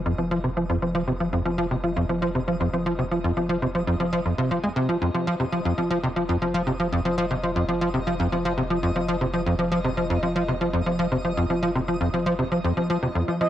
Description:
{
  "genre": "ambient, sequencer-driven space music",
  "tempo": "118 BPM",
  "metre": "4/4",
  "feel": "straight",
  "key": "unclear",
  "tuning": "A4 = 439 Hz",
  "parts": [
    { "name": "warm sub bass", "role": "bass", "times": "0.0-13.5 s", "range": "F1", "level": "-36 LUFS", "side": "equal", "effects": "none" },
    { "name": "twinkling granular texture", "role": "texture", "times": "0.0-13.5 s", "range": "Eb5 to G5", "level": "-38 LUFS", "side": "left 1 dB", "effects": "built-in reverb, cassette tape" },
    { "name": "tight sequencer bass", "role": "riff", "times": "0.1-13.5 s", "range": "F2 to Ab3", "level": "-22 LUFS", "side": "equal", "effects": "wide subtle chorus, cassette tape, analog delay" },
    { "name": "breathy flute-like synth lead", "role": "melody", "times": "13.4-13.5 s", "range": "Eb5", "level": "-20 LUFS", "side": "right 3 dB", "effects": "lush chorus" }
  ],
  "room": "wet spring reverb, RT60 1.6 s",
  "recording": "home recording on cassette",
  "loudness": "-22 LUFS",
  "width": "side -12 dB against mid",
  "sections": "0.0-13.5 A section",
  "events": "fade-in on synth texture 0.0-13.5",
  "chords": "0.0 F7(no3)",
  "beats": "0.44 | 0.95 1.46 1.97 2.48 | 2.98 3.49 4.00 4.51 | 5.02 5.53 6.04 6.54 | 7.05 7.56 8.07 8.58 | 9.09 9.59 10.10 10.61 | 11.12 11.63 12.14 12.64 | 13.15"
}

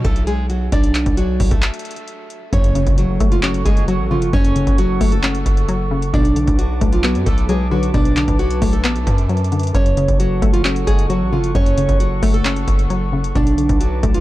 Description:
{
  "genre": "hip hop, trap",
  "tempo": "133 BPM",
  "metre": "4/4",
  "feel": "half-time",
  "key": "F# minor",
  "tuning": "A4 = 440 Hz",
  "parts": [
    { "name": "nylon-string guitar", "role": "melody", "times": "0.0-14.2 s", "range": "E#3 to D5", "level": "-21 LUFS", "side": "right 1 dB", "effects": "digital delay" },
    { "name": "distorted 808-style bass", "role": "bass", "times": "0.0-14.2 s", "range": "F#1 to F#2", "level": "-20 LUFS", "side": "equal", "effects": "distortion" },
    { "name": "booming analog drum machine", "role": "drums", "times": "0.0-14.2 s", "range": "handclaps, hi-hat, kick drum", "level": "-17 LUFS", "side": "equal", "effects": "none" },
    { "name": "hollow square pluck", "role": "accompaniment", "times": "2.5-14.2 s", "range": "F#2 to C#4", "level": "-22 LUFS", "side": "left 3 dB", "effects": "chorus" },
    { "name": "warbly tape-like pad", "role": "sustained chords", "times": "2.9-14.2 s", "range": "A4 to D6", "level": "-28 LUFS", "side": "equal", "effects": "chorus, built-in reverb" },
    { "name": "impact", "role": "sound effects", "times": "2.5-4.3 s", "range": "none", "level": "-28 LUFS", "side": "equal", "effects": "none" }
  ],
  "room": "little or no reverb",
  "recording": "dark, warm production",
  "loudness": "-14 LUFS",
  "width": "side -16 dB against mid",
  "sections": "0.0-2.5 A section; 2.5-14.2 B section",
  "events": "break 1.6-2.5; impact 2.5-4.3",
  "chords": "0.0 Bm7; 2.5 F#m; 6.1 Bm7; 9.7 F#m; 13.4 Bm7",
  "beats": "0.27 | 0.72 1.17 1.62 2.08 | 2.53 2.98 3.43 3.88 | 4.33 4.78 5.23 5.68 | 6.14 6.59 7.04 7.49 | 7.94 8.39 8.84 9.29 | 9.74 10.20 10.65 11.10 | 11.55 12.00 12.45 12.90 | 13.35 13.80"
}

